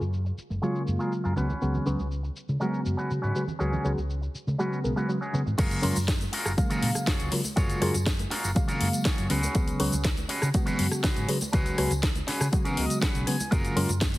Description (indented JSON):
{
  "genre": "filtered disco house",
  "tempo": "121 BPM",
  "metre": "4/4",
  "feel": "straight",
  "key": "F# major",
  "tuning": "A4 = 444 Hz",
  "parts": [
    { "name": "hollow-body short-scale fingered electric bass", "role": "bass", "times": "0.0-14.2 s", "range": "F#1 to C#3", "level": "-30 LUFS", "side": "equal", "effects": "tube saturation, sidechain pumping, low-pass filter" },
    { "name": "house drum kit", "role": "drums", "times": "0.0-14.2 s", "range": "crash cymbal, hi-hat, rim click, shaker, snare drum", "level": "-32 LUFS", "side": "left 1 dB", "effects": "overdrive, sidechain pumping on perc, low-pass filter on perc, sidechain pumping on hats, low-pass filter on hats, sidechain pumping on cymbals, low-pass filter on cymbals, low-pass filter on snare" },
    { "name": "tambourine and congas", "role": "percussion", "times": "0.0-14.2 s", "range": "none", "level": "-39 LUFS", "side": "right 2 dB", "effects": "sidechain pumping on perc, low-pass filter on perc" },
    { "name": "electric guitar with an envelope filter", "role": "riff", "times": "0.2-13.9 s", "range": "C#4 to G#5", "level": "-34 LUFS", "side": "equal", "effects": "sidechain pumping, low-pass filter" },
    { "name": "reed electric piano", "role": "accompaniment", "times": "0.6-13.9 s", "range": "C#3 to E#5", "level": "-29 LUFS", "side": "equal", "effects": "overdrive, phaser, sidechain pumping, low-pass filter" },
    { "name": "electronic kick drum", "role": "drums", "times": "5.6-14.1 s", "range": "none", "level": "-26 LUFS", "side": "equal", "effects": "overdrive" }
  ],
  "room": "light reverb",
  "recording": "heavily compressed radio sound",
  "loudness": "-24 LUFS",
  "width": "side -17 dB against mid",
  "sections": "0.0-5.6 A section; 5.6-14.2 B section",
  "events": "filter sweep 0.0-5.6; drop 5.6-14.2; clean electric guitar fill 12.5-13.5",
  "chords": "0.0 F#maj9; 1.4 C#7sus4; 5.6 F#maj9; 9.3 C#7sus4; 13.5 F#maj9"
}